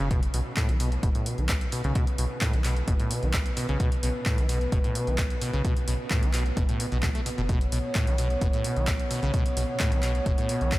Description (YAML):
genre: acid house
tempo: 130 BPM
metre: 4/4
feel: straight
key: unclear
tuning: A4 = 440 Hz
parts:
  - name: acid bass, saw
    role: riff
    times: 0.0-10.8 s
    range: A2 to A3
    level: -30 LUFS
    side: equal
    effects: tube saturation, wide subtle chorus, cassette tape, tape echo
  - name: warm sub bass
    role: bass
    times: 0.0-10.8 s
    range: F#1 to B1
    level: -28 LUFS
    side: equal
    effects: sidechain pumping
  - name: punchy analog drum machine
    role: drums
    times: 0.0-10.8 s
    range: handclaps, hi-hat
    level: -34 LUFS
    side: equal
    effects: overdrive
  - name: dark analog pad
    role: sustained chords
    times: 0.1-10.8 s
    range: B3 to C#5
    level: -33 LUFS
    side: equal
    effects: chorus, sidechain pumping
  - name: electronic kick drum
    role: drums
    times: 0.1-10.8 s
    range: none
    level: -26 LUFS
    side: equal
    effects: overdrive
room: moderate cathedral reverb, RT60 6.8 s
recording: dreamy mix soaked in reverb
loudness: -24 LUFS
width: side -18 dB against mid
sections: 0.0-10.8 A section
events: none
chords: 0.0 B5